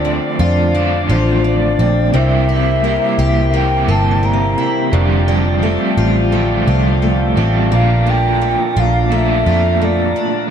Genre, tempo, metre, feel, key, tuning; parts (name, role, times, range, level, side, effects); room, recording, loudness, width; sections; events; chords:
dream pop; 86 BPM; 4/4; straight; A4 = 441 Hz
breathy mellow concert flute; melody; 0.0-10.4 s; C5 to Bb5; -20 LUFS; right 1 dB; tape echo
crunchy overdriven guitar; accompaniment; 0.0-10.5 s; F2 to G4; -19 LUFS; right 2 dB; tremolo, wide subtle chorus
mellow tonewheel organ; sustained chords; 0.0-10.5 s; E4 to Bb5; -22 LUFS; equal; slow rotary speaker
picked twelve-string acoustic guitar; arpeggios; 0.0-10.5 s; F2 to G4; -20 LUFS; left 3 dB; wide subtle chorus, tape echo
vintage muted picked electric bass; bass; 0.0-10.1 s; F1 to F2; -16 LUFS; equal
synth chime; texture; 0.0-7.8 s; G4 to E5; -30 LUFS; right 1 dB; ensemble chorus, phaser, tremolo, tape echo
moderate lush hall reverb, RT60 2.2 s; dark, warm production; -12 LUFS; side -8 dB against mid
0.0-10.5 A section
0.0 Dm7; 2.1 C7; 4.9 F69; 7.7 Bbmaj7